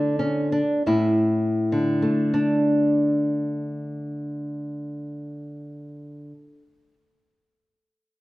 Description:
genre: classical, baroque-style dance for nylon-string guitar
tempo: 41 BPM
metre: 3/4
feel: rubato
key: unclear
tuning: A4 = 440 Hz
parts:
  - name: nylon-string guitar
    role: solo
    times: 0.0-6.9 s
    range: A2 to E4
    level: -22 LUFS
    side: equal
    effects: none
room: moderate recital hall reverb, RT60 1.3 s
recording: dark, warm production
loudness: -21 LUFS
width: side -19 dB against mid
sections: 0.0-2.3 A section; 2.3-6.7 B section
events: slowing down 0.0-2.3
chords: 0.0 Asus4; 0.9 A; 2.3 D5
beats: 0.88 | 2.34 3.80 5.27

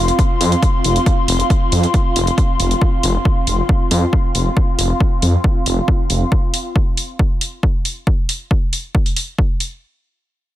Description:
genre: driving peak-time techno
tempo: 137 BPM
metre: 4/4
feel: straight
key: unclear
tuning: A4 = 438 Hz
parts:
  - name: detuned saw bass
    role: bass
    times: 0.0-6.2 s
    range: F1 to F2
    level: -16 LUFS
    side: equal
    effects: sidechain pumping
  - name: airy breathy pad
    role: texture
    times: 0.0-6.3 s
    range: C4 to C6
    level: -21 LUFS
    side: left 1 dB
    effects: chorus, sidechain pumping
  - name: electronic hi-hat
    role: drums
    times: 0.1-9.7 s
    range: none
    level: -22 LUFS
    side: equal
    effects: none
  - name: electronic kick drum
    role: drums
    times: 0.2-9.5 s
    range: none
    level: -16 LUFS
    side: equal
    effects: overdrive
room: little or no reverb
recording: none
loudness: -14 LUFS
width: side -14 dB against mid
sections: 0.0-9.8 A section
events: none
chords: 0.0 F5; 9.8 N.C.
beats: 0.19 0.62 | 1.06 1.50 1.94 2.38 | 2.81 3.25 3.69 4.13 | 4.57 5.00 5.44 5.88 | 6.32 6.76 7.19 7.63 | 8.07 8.51 8.95 9.38

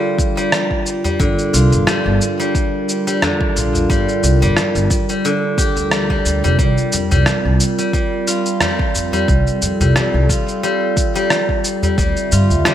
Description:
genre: organic downtempo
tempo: 89 BPM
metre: 4/4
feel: swing 55% on 16ths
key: G minor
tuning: A4 = 436 Hz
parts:
  - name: warbly tape-like pad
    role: sustained chords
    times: 0.0-12.7 s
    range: D3 to E5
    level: -21 LUFS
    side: equal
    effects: chorus, built-in reverb, sidechain pumping
  - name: steel-string zither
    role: arpeggios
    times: 0.0-12.7 s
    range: D3 to G4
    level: -20 LUFS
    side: equal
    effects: digital delay
  - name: electronic kick drum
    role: drums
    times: 0.2-12.1 s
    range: none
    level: -19 LUFS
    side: equal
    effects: none
  - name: electronic shaker and rim click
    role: drums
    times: 0.2-12.7 s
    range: none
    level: -21 LUFS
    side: equal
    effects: overdrive, gated reverb
  - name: udu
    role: percussion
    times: 1.0-12.6 s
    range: none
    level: -22 LUFS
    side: equal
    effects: none
  - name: upright bass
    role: bass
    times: 1.2-12.6 s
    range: F1 to G2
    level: -17 LUFS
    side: equal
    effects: sidechain pumping
room: moderate plate reverb, RT60 2.4 s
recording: bright 1980s-style digital production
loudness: -14 LUFS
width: side -11 dB against mid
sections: 0.0-12.7 A section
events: none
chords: 0.0 Gm7; 6.6 C7sus4; 12.0 Dm9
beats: 0.53 | 1.20 1.87 2.55 3.22 | 3.90 4.57 5.24 5.92 | 6.59 7.27 7.94 8.62 | 9.29 9.96 10.64 11.31 | 11.99 12.66

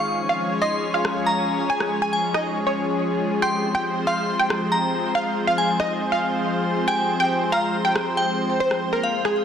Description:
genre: uplifting trance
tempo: 139 BPM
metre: 4/4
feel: straight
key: F minor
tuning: A4 = 440 Hz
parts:
  - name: wide unison pluck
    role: melody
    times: 0.0-9.4 s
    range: Ab4 to Ab5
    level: -25 LUFS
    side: right 1 dB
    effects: digital delay
  - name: glassy synth bell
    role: second line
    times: 0.0-9.4 s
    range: F5 to Db6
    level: -26 LUFS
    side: left 1 dB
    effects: chorus, digital delay
  - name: plucky unison lead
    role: second line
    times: 0.0-9.4 s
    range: Ab4 to Ab5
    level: -28 LUFS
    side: equal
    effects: digital delay
  - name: lush unison pad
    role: sustained chords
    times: 0.0-9.4 s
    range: F3 to Db5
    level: -24 LUFS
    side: left 1 dB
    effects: chorus, vintage 12-bit sampler grit
  - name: electronic rim click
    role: drums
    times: 1.0-9.3 s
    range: none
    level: -28 LUFS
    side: equal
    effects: soft clipping on snare
room: moderate digital room reverb, RT60 1.1 s, digital ambience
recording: dense, heavily limited modern master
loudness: -20 LUFS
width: side -8 dB against mid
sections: 0.0-9.4 A section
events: none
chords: 0.0 Db; 3.4 Fmadd9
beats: 0.40 0.83 1.26 | 1.70 2.13 2.56 2.99 | 3.42 3.85 4.29 4.72 | 5.15 5.58 6.01 6.45 | 6.88 7.31 7.74 8.17 | 8.60 9.04

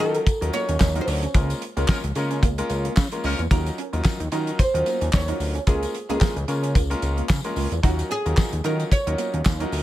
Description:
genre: early-eighties boogie funk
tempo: 111 BPM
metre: 4/4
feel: swing 56% on 16ths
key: Eb minor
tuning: A4 = 444 Hz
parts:
  - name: oud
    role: melody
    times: 0.0-9.8 s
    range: Gb4 to Db5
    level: -27 LUFS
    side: right 1 dB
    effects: none
  - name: clear grand piano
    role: accompaniment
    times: 0.0-9.8 s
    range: Gb3 to Bb4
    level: -30 LUFS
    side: left 2 dB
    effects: none
  - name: electric guitar through a small old amp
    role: riff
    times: 0.0-9.8 s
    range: Ab3 to Eb4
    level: -34 LUFS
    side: right 7 dB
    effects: ensemble chorus
  - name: fat analog bass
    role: bass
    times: 0.0-9.8 s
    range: Db2 to Eb3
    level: -25 LUFS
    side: equal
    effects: none
  - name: damped 70s drum kit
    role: drums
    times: 0.1-9.8 s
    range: handclaps, hi-hat, kick drum, snare drum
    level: -22 LUFS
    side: equal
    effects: gated reverb
  - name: tambourine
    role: percussion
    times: 0.1-9.8 s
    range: none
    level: -40 LUFS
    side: left 10 dB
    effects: none
  - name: warm horn section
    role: second line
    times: 1.9-3.4 s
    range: F3 to Bb4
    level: -31 LUFS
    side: left 2 dB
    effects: none
room: small room ambience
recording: none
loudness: -20 LUFS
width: side -14 dB against mid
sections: 0.0-9.8 A section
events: band accent 1.3-3.5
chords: 0.0 Ebm9; 1.3 Db6; 3.5 Ebm9; 5.7 Db6; 7.8 Ebm9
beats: 0.27 0.81 | 1.35 1.89 2.43 2.97 | 3.51 4.05 4.59 5.13 | 5.67 6.21 6.75 7.29 | 7.83 8.38 8.91 9.46

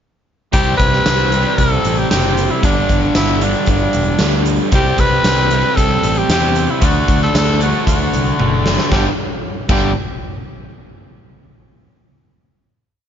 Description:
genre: classic rock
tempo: 115 BPM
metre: 4/4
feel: straight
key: G major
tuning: A4 = 439 Hz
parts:
  - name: growling tenor saxophone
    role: melody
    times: 0.5-9.9 s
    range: D4 to B4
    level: -19 LUFS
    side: equal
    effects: none
  - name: distorted electric guitar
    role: riff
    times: 0.5-9.9 s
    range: G2 to D4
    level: -21 LUFS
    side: right 12 dB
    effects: distortion
  - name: overdriven electric guitar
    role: riff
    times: 0.5-9.9 s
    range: G2 to D4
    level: -21 LUFS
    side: left 10 dB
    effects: none
  - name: growling fingered electric bass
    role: bass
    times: 0.5-9.9 s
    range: E1 to E2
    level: -19 LUFS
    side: equal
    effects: overdrive
  - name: huge arena drum kit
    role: drums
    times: 0.5-9.8 s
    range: crash cymbal, hi-hat, kick drum, snare drum, tambourine, toms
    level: -18 LUFS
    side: equal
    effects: none
room: small room ambience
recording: nothing above 7.5 kHz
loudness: -12 LUFS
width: side -8 dB against mid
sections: 0.5-8.9 pre-chorus; 8.9-11.0 final chord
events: drum fill 8.4-8.9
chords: 0.5 C5; 2.6 G5; 4.7 C; 6.8 D; 8.9 G5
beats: | 0.54 1.06 1.59 2.11 | 2.63 3.16 3.68 4.21 | 4.73 5.25 5.78 6.30 | 6.83 7.35 7.87 8.39 | 8.91 9.43

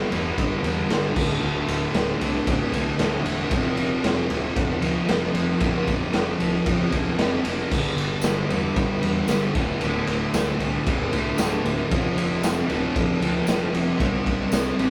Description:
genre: garage rock duo or trio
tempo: 114 BPM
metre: 4/4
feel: straight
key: unclear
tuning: A4 = 438 Hz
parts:
  - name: fuzz guitar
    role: riff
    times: 0.0-14.9 s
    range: D2 to C4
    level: -27 LUFS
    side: equal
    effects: distortion
  - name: growling fingered electric bass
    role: bass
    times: 0.0-14.9 s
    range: D1 to E2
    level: -36 LUFS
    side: equal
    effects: overdrive
  - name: raw garage drum kit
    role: drums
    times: 0.1-14.9 s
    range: crash cymbal, kick drum, ride cymbal, snare drum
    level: -26 LUFS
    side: equal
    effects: none
  - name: tambourine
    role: percussion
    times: 8.2-14.6 s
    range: none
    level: -40 LUFS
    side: equal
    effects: none
room: moderate studio reverb, RT60 0.6 s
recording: rough rehearsal-room recording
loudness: -23 LUFS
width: mono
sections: 0.0-14.9 A section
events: none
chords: 0.0 G5; 1.2 D5; 3.5 F5; 7.7 G5; 9.5 D5; 11.9 F5; 14.0 C5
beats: 0.37 0.89 | 1.42 1.94 2.46 2.99 | 3.51 4.04 4.56 5.08 | 5.61 6.13 6.66 7.18 | 7.71 8.23 8.76 9.28 | 9.80 10.33 10.85 11.38 | 11.90 12.42 12.95 13.47 | 13.99 14.52

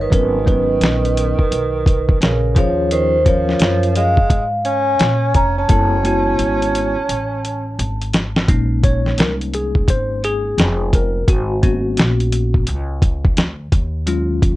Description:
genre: hip hop, jazz-hop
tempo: 86 BPM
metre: 4/4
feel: swing 64% on 16ths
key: Bb phrygian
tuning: A4 = 440 Hz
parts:
  - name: vibraphone with soft mallets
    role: melody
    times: 0.0-8.1 s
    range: Bb4 to Bb5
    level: -20 LUFS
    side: equal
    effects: analog delay, plate reverb
  - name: breathy tenor saxophone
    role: second line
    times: 0.0-8.1 s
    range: Db3 to Db4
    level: -22 LUFS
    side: right 4 dB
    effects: plate reverb
  - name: upright bass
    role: bass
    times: 0.0-14.6 s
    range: F1 to Bb2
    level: -20 LUFS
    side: equal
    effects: none
  - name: bell-like tine electric piano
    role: accompaniment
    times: 0.1-14.6 s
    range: F3 to Db5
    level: -21 LUFS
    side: left 2 dB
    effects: medium stereo tremolo, plate reverb
  - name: dusty soul sampler-style drum kit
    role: drums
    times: 0.1-14.6 s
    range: hi-hat, kick drum, snare drum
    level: -16 LUFS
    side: equal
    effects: none
room: moderate studio ambience, RT60 0.5 s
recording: worn, warbling old tape, cassette tape, warbly pitch drift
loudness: -14 LUFS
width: side -16 dB against mid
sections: 0.0-8.5 A section; 8.5-14.6 B section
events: drum fill 5.7-8.5; tine electric piano solo 8.5-14.6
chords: 0.1 Abm11; 2.6 Ebm11; 5.7 Gbm11; 8.5 Bbm11; 11.3 Abm11; 13.7 Ebm11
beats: | 0.12 0.82 1.51 2.21 | 2.91 3.61 4.31 5.00 | 5.70 6.40 7.10 7.79 | 8.49 9.19 9.89 10.59 | 11.28 11.98 12.68 13.38 | 14.07

